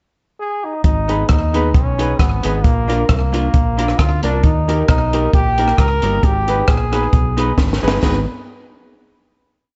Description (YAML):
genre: ska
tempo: 134 BPM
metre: 4/4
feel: swing 55% on 8ths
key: G# harmonic minor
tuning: A4 = 440 Hz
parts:
  - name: brilliant trombone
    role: melody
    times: 0.4-7.6 s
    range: A#3 to A#4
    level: -23 LUFS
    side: equal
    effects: slapback echo
  - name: fingered electric bass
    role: bass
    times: 0.8-8.3 s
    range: G1 to D#2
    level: -21 LUFS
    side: equal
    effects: none
  - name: compact cocktail drum kit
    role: drums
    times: 0.8-8.1 s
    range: crash cymbal, hi-hat, kick drum, rim click, snare drum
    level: -19 LUFS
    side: equal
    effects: none
  - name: hollow-body jazz guitar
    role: accompaniment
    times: 1.1-8.2 s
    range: A#3 to B4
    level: -26 LUFS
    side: equal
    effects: none
  - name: dark upright piano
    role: stabs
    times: 1.1-8.2 s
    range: A#3 to B4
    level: -27 LUFS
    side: equal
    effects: slapback echo
room: light reverb, studio reverb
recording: nothing above 7.9 kHz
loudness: -16 LUFS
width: mono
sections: 0.0-0.8 pickup bar; 0.8-8.0 A section; 8.0-9.8 final chord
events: drum fill 7.6-8.0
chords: 0.0 N.C.; 0.8 G#m; 2.6 A#; 4.4 D#; 6.2 G#m